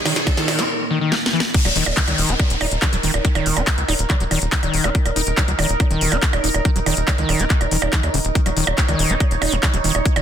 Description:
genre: psychedelic trance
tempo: 141 BPM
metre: 4/4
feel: straight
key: unclear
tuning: A4 = 440 Hz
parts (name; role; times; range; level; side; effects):
- bubbling stepped-filter texture; sustained chords; 0.0-10.2 s; Eb4 to Eb5; -27 LUFS; right 2 dB; chorus, built-in reverb, sidechain pumping
- riser and downlifter; sound effects; 0.0-4.9 s; none; -26 LUFS; equal; none
- deep dark ambient pad; texture; 0.0-0.7 s; Bb3 to Db6; -32 LUFS; right 2 dB; chorus, built-in reverb, sidechain pumping
- screaming distorted acid line; riff; 0.1-10.2 s; Db3 to Eb4; -24 LUFS; moving between left 8 dB and right 7 dB; distortion, chorus, auto-pan, sidechain pumping, tape echo
- tight sequencer bass; bass; 0.1-10.2 s; Eb1 to Eb2; -23 LUFS; equal; high-pass filter
- techno drum kit; drums; 0.1-10.2 s; crash cymbal, handclaps, hi-hat, percussion blips, snare drum; -21 LUFS; right 1 dB; none
- electronic kick drum; drums; 0.3-10.1 s; none; -18 LUFS; equal; none
room: light reverb, digital ambience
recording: dense, heavily limited modern master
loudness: -16 LUFS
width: side -9 dB against mid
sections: 0.0-1.5 A section; 1.5-10.2 B section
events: build-up 0.0-1.5; drum fill 0.0-0.7, 1.1-1.5; riser 0.0-0.7; drop 1.5-10.2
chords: 0.0 Eb5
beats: 0.27 0.69 1.12 | 1.54 1.97 2.40 2.82 | 3.25 3.67 4.10 4.52 | 4.95 5.37 5.80 6.22 | 6.65 7.08 7.50 7.93 | 8.35 8.78 9.20 9.63 | 10.05

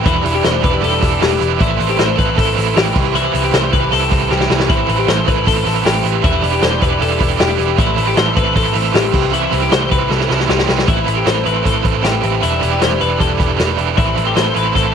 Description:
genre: jangly indie pop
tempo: 155 BPM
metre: 4/4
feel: straight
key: A minor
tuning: A4 = 442 Hz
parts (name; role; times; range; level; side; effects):
- biting overdriven guitar; accompaniment; 0.0-14.9 s; A2 to B4; -18 LUFS; right 13 dB; tremolo
- warm analog pad; sustained chords; 0.0-14.9 s; G4 to E6; -25 LUFS; equal; chorus
- twelve-string electric guitar; arpeggios; 0.0-14.9 s; E4 to C5; -19 LUFS; left 12 dB; tape echo
- vintage muted picked electric bass; bass; 0.1-14.9 s; E1 to C2; -20 LUFS; equal; none
- vintage drum kit; drums; 0.1-14.8 s; crash cymbal, hi-hat, kick drum, snare drum; -18 LUFS; left 1 dB; none
room: light reverb, small room ambience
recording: 1960s-style stereo with parts hard left and right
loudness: -12 LUFS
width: side -7 dB against mid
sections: 0.0-10.9 A section; 10.9-14.9 B section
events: drum fill 4.3-4.7, 10.1-10.9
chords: 0.1 Em7; 1.6 Amadd9; 3.0 Cmaj7; 4.7 Amadd9; 6.2 Em7; 7.8 Amadd9; 9.1 Cmaj7; 10.9 Amadd9; 12.4 Em7; 14.0 Amadd9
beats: | 0.06 0.44 0.83 1.22 | 1.60 1.99 2.38 2.76 | 3.15 3.54 3.92 4.31 | 4.70 5.08 5.47 5.86 | 6.24 6.63 7.01 7.40 | 7.79 8.18 8.56 8.95 | 9.33 9.72 10.11 10.49 | 10.88 11.27 11.65 12.04 | 12.43 12.82 13.20 13.59 | 13.98 14.37 14.75

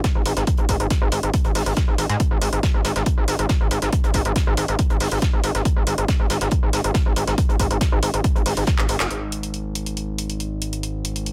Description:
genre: driving peak-time techno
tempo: 139 BPM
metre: 4/4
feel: straight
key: unclear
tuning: A4 = 440 Hz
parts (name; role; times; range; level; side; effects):
- electronic kick drum; drums; 0.0-8.8 s; none; -23 LUFS; equal; none
- techno drum kit; drums; 0.0-11.3 s; handclaps, hi-hat; -30 LUFS; equal; none
- warm soul drum kit; drums; 0.0-9.1 s; hi-hat, snare drum; -35 LUFS; equal; high-pass filter on hats, high-pass filter on snare, high-pass filter on room
- gritty driven synth bass; bass; 0.2-11.3 s; F#1 to G#2; -25 LUFS; equal; sidechain pumping
room: little or no reverb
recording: none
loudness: -21 LUFS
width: mono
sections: 0.0-9.1 A section; 9.1-11.3 B section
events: drum fill 8.8-9.1; band accent 9.0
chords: none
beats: 0.04 | 0.47 0.91 1.34 1.77 | 2.20 2.63 3.06 3.50 | 3.93 4.36 4.79 5.22 | 5.65 6.08 6.52 6.95 | 7.38 7.81 8.24 8.68 | 9.11 9.54 9.97 10.40 | 10.83 11.27

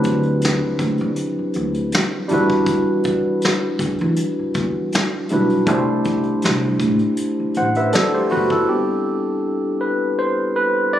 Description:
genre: R&B, neo-soul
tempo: 80 BPM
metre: 4/4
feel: straight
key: unclear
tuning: A4 = 438 Hz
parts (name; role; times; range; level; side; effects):
- barky tine electric piano; accompaniment; 0.0-11.0 s; F#3 to F#5; -18 LUFS; equal; wide subtle chorus
- upright bass; bass; 0.0-8.6 s; G1 to E3; -23 LUFS; left 1 dB; none
- vintage brush drum kit; drums; 0.0-8.7 s; hi-hat, kick drum, snare drum; -22 LUFS; equal; none
room: small room ambience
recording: recorded on a phone in the room, club reverb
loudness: -17 LUFS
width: side -11 dB against mid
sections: 0.0-8.7 A section; 8.7-11.0 B section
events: tine electric piano solo 8.7-11.0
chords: 0.0 D13; 2.3 Em9; 5.7 C69; 8.7 Gadd11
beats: 0.42 1.17 1.92 | 2.67 3.42 4.17 4.92 | 5.67 6.42 7.17 7.92 | 8.67 9.42 10.17 10.92

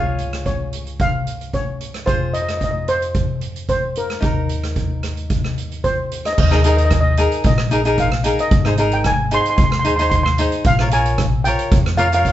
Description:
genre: calypso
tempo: 112 BPM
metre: 4/4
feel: straight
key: unclear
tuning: A4 = 440 Hz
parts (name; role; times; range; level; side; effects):
- steel pan; melody; 0.0-12.3 s; Bb4 to C6; -21 LUFS; equal; none
- cavaquinho; accompaniment; 0.0-12.3 s; Eb4 to Db5; -22 LUFS; left 1 dB; none
- upright bass; bass; 0.0-12.3 s; Ab1 to F2; -22 LUFS; equal; none
- street-band drum kit; drums; 0.2-12.3 s; crash cymbal, hi-hat, kick drum, rim click; -20 LUFS; equal; none
room: moderate studio reverb, RT60 0.6 s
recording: band playing live in one room, nothing above 7.8 kHz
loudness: -16 LUFS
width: side -12 dB against mid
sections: 0.0-6.4 A section; 6.4-12.3 B section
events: none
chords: 0.0 Db; 2.1 Fm; 4.2 Eb5; 6.4 Ebsus4; 8.5 Abadd9; 10.6 Bbm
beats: 0.46 1.00 1.53 | 2.07 2.61 3.15 3.69 | 4.23 4.76 5.30 5.84 | 6.37 6.91 7.45 7.98 | 8.51 9.05 9.58 10.12 | 10.65 11.18 11.72 12.25

